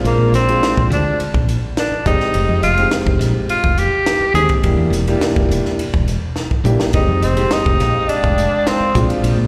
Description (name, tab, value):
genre	electric jazz fusion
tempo	104 BPM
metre	4/4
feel	straight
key	F dorian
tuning	A4 = 440 Hz
part	warm grand piano	accompaniment	0.0-9.5 s	Ab3 to G4	-23 LUFS	equal	plate reverb, slapback echo
part	woody fretless electric bass	bass	0.0-9.5 s	E1 to Bb2	-20 LUFS	equal	none
part	warm tenor saxophone	melody	0.1-9.0 s	Bb3 to Ab4	-20 LUFS	equal	plate reverb, slapback echo
part	crisp fusion drum kit	drums	0.1-9.4 s	hi-hat, kick drum, ride cymbal, snare drum, toms	-23 LUFS	equal	none
part	glassy FM pad	sustained chords	7.8-9.5 s	Ab3 to Eb6	-28 LUFS	equal	ensemble chorus, built-in reverb, plate reverb
room	light reverb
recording	live gig heard through the venue's PA, recital hall reverb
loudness	-16 LUFS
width	mono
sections	0.0-9.5 A section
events	tenor saxophone solo 0.0-9.5; drum fill 6.4-6.9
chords	0.0 Bb9; 2.1 Fm9; 4.6 Em7b5; 6.9 Fm9; 9.0 Bb9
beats	| 0.05 0.62 1.20 1.77 | 2.35 2.92 3.50 4.07 | 4.65 5.22 5.80 6.37 | 6.94 7.52 8.09 8.67 | 9.24